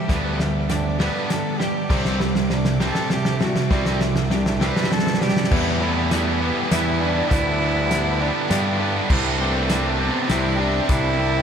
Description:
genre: post-rock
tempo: 100 BPM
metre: 3/4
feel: straight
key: unclear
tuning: A4 = 440 Hz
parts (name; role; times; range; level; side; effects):
- rich cello; melody; 0.0-11.4 s; G3 to B4; -26 LUFS; equal; analog delay
- clear symphonic string section; sustained chords; 0.0-11.4 s; G3 to D6; -36 LUFS; equal; none
- twelve-string electric guitar; arpeggios; 0.0-11.4 s; E2 to G4; -34 LUFS; left 2 dB; none
- vibraphone with medium hard mallets; arpeggios; 0.0-11.4 s; A4 to C6; -33 LUFS; right 5 dB; analog delay
- distorted electric guitar; riff; 0.0-11.4 s; C3 to E4; -27 LUFS; left 8 dB; overdrive
- sludgy distorted guitar; riff; 0.0-11.4 s; C3 to E4; -25 LUFS; right 8 dB; overdrive
- overdriven picked electric bass; bass; 0.1-11.4 s; C2 to G2; -24 LUFS; equal; none
- loose indie drum kit; drums; 0.1-11.0 s; crash cymbal, hi-hat, kick drum, snare drum; -24 LUFS; equal; none
room: wet huge ambient reverb, RT60 7.5 s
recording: dreamy mix soaked in reverb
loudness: -18 LUFS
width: side -7 dB against mid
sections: 0.0-5.5 A section; 5.5-11.4 B section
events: build-up 0.0-5.5; drum fill 0.0-5.5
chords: 0.1 G/D; 1.9 Csus2; 5.5 Em; 7.3 G/D; 9.1 Csus2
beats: | 0.09 0.70 1.30 | 1.91 2.51 3.11 | 3.71 4.31 4.91 | 5.51 6.11 6.71 | 7.30 7.90 8.50 | 9.10 9.70 10.30 | 10.90

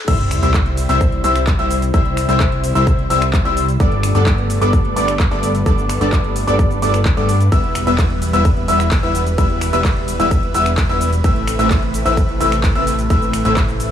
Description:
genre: EDM, festival progressive house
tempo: 129 BPM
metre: 4/4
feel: straight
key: unclear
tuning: A4 = 440 Hz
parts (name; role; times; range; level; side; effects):
- lush unison pad; sustained chords; 0.3-13.9 s; C3 to B4; -27 LUFS; left 1 dB; chorus, phaser, sidechain pumping
- clear concert grand piano; arpeggios; 0.1-13.9 s; D6 to E6; -21 LUFS; left 2 dB; sidechain pumping, tape echo
- supersaw stab; riff; 0.1-13.9 s; G3 to E5; -21 LUFS; equal; wide subtle chorus, sidechain pumping, tape echo
- fat analog bass; bass; 0.1-13.9 s; E1 to G2; -19 LUFS; equal; sidechain pumping
- big-room dance drum kit; drums; 0.1-13.9 s; crash cymbal, finger snaps, handclaps, hi-hat, ride cymbal, shaker; -26 LUFS; equal; overdrive, high-pass filter on snare, high-pass filter on hats, high-pass filter on perc, high-pass filter on cymbals
- electronic kick drum; drums; 0.1-13.7 s; none; -17 LUFS; equal; high-pass filter on kick
- sub drop; sound effects; 0.1-1.9 s; none; -24 LUFS; equal; none
room: little or no reverb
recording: high-pass filter, small room ambience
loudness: -13 LUFS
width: side -10 dB against mid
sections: 0.1-13.9 A section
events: drop 0.1-13.9; impact 0.1-1.9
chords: 0.1 C; 3.8 Gadd9; 7.5 Em; 11.2 Amadd9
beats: | 0.08 0.55 1.01 1.48 | 1.94 2.40 2.87 3.33 | 3.80 4.27 4.73 5.20 | 5.66 6.13 6.59 7.06 | 7.52 7.99 8.45 8.92 | 9.38 9.85 10.31 10.78 | 11.24 11.71 12.17 12.64 | 13.10 13.57

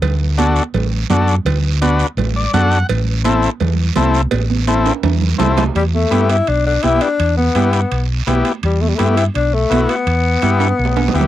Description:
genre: latin, cumbia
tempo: 167 BPM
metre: 4/4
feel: straight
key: E minor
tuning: A4 = 440 Hz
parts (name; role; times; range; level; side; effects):
- fingered electric bass; bass; 0.0-11.3 s; A1 to G2; -16 LUFS; equal; none
- congas; percussion; 0.0-11.3 s; none; -22 LUFS; right 6 dB; none
- cowbell and timbales; percussion; 0.0-11.3 s; none; -25 LUFS; right 10 dB; none
- guiro; percussion; 0.0-11.3 s; none; -30 LUFS; right 13 dB; none
- overdriven combo organ; accompaniment; 0.4-11.3 s; B3 to F#5; -16 LUFS; left 4 dB; none
- breathy tenor saxophone; second line; 5.8-11.3 s; G3 to E4; -17 LUFS; left 4 dB; none
room: little or no reverb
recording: dry, close 1970s-style studio recording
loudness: -13 LUFS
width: side -13 dB against mid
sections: 0.0-5.8 A section; 5.8-11.3 B section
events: transistor combo organ fill 2.2-2.9; drum fill 4.3-5.8, 10.6-11.3; tenor saxophone solo 5.8-11.3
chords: 0.0 D; 2.9 Am; 5.8 Em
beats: | 0.02 0.38 0.74 1.10 | 1.46 1.81 2.17 2.53 | 2.89 3.25 3.61 3.96 | 4.32 4.68 5.04 5.40 | 5.76 6.12 6.48 6.83 | 7.19 7.55 7.91 8.27 | 8.63 8.99 9.35 9.71 | 10.07 10.43 10.79 11.14

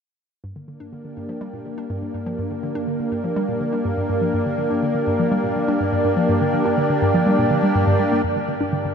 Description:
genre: ambient, sequencer-driven space music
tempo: 123 BPM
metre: 4/4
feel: straight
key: unclear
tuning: A4 = 440 Hz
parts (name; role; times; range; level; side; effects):
- lush unison pad; sustained chords; 1.2-8.9 s; Bb3 to G4; -21 LUFS; equal; chorus
- hollow square pluck; riff; 0.4-8.9 s; G2 to D4; -23 LUFS; equal; chorus, tape echo
- analog drone; bass; 8.5-8.9 s; G2; -34 LUFS; equal; chorus
room: wet huge ambient reverb, RT60 7.0 s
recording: none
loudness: -18 LUFS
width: side -6 dB against mid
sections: 0.4-8.2 A section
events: fade-in on synth arpeggio sound 0.4-8.2; filter sweep on analog synth pad 0.4-8.2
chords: 0.4 Gm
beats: | 0.44 0.92 1.41 1.90 | 2.39 2.88 3.36 3.85 | 4.34 4.83 5.31 5.80 | 6.29 6.78 7.26 7.75 | 8.24 8.73

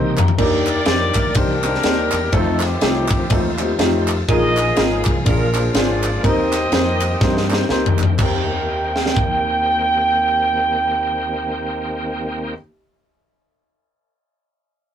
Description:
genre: uptempo gospel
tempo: 123 BPM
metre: 4/4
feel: swing 58% on 8ths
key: Eb major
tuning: A4 = 440 Hz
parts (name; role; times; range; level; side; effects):
- warm upright piano; accompaniment; 0.0-12.6 s; Eb2 to Bb5; -22 LUFS; left 1 dB; none
- bright tonewheel organ; sustained chords; 0.0-12.5 s; Db3 to G5; -27 LUFS; equal; slow rotary speaker, chorus vibrato
- fingered electric bass; bass; 0.0-12.5 s; Ab1 to G2; -25 LUFS; equal; none
- tight funk drum kit; drums; 0.2-9.3 s; crash cymbal, kick drum, ride cymbal, snare drum, toms; -19 LUFS; equal; none
- group handclap; percussion; 0.2-8.5 s; none; -27 LUFS; right 2 dB; none
- mellow horn section; melody; 0.4-12.5 s; C4 to G5; -20 LUFS; right 1 dB; none
room: moderate booth ambience, RT60 0.2 s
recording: rough rehearsal-room recording, warm saturation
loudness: -16 LUFS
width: side -9 dB against mid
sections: 0.4-8.2 A section; 8.2-12.1 B section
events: drum fill 0.0-0.4, 7.2-8.2; tonewheel organ fill 0.0-0.4; upright piano fill 0.0-0.4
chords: 0.4 Ebmaj7; 2.3 F7; 4.3 Bb7sus4; 5.3 Bb7; 6.2 Eb6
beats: | 0.38 0.87 1.36 1.85 | 2.34 2.83 3.31 3.80 | 4.29 4.78 5.26 5.75 | 6.24 6.73 7.22 7.70 | 8.19 8.68 9.17 9.65 | 10.14 10.63 11.12 11.60

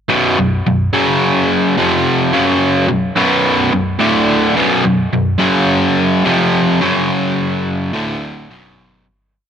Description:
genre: rock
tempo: 107 BPM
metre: 4/4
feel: straight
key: B minor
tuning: A4 = 440 Hz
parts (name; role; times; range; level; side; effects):
- cranked stack guitar; solo; 0.1-9.1 s; B1 to F#3; -12 LUFS; equal; overdrive, analog delay
room: moderate studio reverb, RT60 0.5 s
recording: none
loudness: -12 LUFS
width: side -8 dB against mid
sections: 0.1-9.0 riff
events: fade-out 6.8-9.0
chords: 0.1 B5; 0.9 F#5; 1.8 F5; 2.3 F#5; 2.9 B5; 4.0 D5; 4.6 B5; 5.4 F#5; 6.2 F5; 6.8 F#5; 7.9 D5; 8.5 B5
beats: | 0.10 0.66 1.21 1.77 | 2.33 2.88 3.44 4.00 | 4.56 5.12 5.68 6.24 | 6.80 7.36 7.92 8.48

